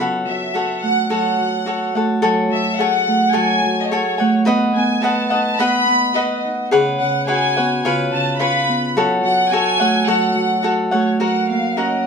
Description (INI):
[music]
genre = mexican folk, mariachi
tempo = 107 BPM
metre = 2/4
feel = straight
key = F# dorian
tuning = A4 = 440 Hz
[part]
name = cavaquinho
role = accompaniment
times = 0.0-12.1 s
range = E#4 to G#5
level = -19 LUFS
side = left 2 dB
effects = none
[part]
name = Celtic harp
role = arpeggios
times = 0.0-12.1 s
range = C#3 to B4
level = -20 LUFS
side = right 2 dB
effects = none
[part]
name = warm studio violin section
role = melody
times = 0.3-12.1 s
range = C#5 to B5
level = -19 LUFS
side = equal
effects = none
[sound]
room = wet small room ambience, RT60 0.5 s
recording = band playing live in one room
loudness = -15 LUFS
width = side -6 dB against mid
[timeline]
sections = 0.0-2.2 A section; 2.2-11.2 A section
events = none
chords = 0.0 F#m; 2.2 F#madd9; 4.5 B; 6.7 C#7sus4; 7.8 C#7; 8.9 F#m; 11.2 F#